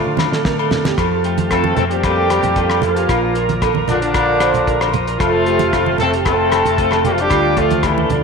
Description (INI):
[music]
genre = highlife guitar band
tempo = 114 BPM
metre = 4/4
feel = straight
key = F major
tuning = A4 = 443 Hz
[part]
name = mellow horn section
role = melody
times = 0.0-8.2 s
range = D3 to A4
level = -18 LUFS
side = left 1 dB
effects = tape echo
[part]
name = breathy alto saxophone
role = second line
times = 0.0-8.2 s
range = F3 to D4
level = -24 LUFS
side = left 8 dB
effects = none
[part]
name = electric guitar at the edge of break-up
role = accompaniment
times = 0.0-8.2 s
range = A2 to Bb4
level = -26 LUFS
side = left 11 dB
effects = vibrato effect
[part]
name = overdriven combo organ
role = sustained chords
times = 0.0-8.2 s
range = C5 to Bb5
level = -28 LUFS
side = right 1 dB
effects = none
[part]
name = electric guitar through a small old amp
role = arpeggios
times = 0.0-8.2 s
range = F4 to C5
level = -21 LUFS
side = right 10 dB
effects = analog chorus, tape echo
[part]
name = fingered electric bass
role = bass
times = 0.0-8.2 s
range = F1 to D3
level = -23 LUFS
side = equal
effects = none
[part]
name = cloth-damped thuddy drum kit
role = drums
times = 0.2-8.2 s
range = hi-hat, kick drum, rim click, snare drum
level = -23 LUFS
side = equal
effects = none
[part]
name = agogo bells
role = percussion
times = 0.2-8.0 s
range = none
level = -24 LUFS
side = left 14 dB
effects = none
[part]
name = congas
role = percussion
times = 0.2-8.2 s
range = none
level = -24 LUFS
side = right 8 dB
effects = none
[sound]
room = moderate echo chamber reverb, RT60 1.7 s, small room ambience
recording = 1960s-style stereo with parts hard left and right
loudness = -13 LUFS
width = side -5 dB against mid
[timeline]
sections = 1.0-8.2 A section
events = drum fill 0.0-1.0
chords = 0.0 Dm; 1.0 F; 3.1 Bb; 5.2 F; 7.3 Dm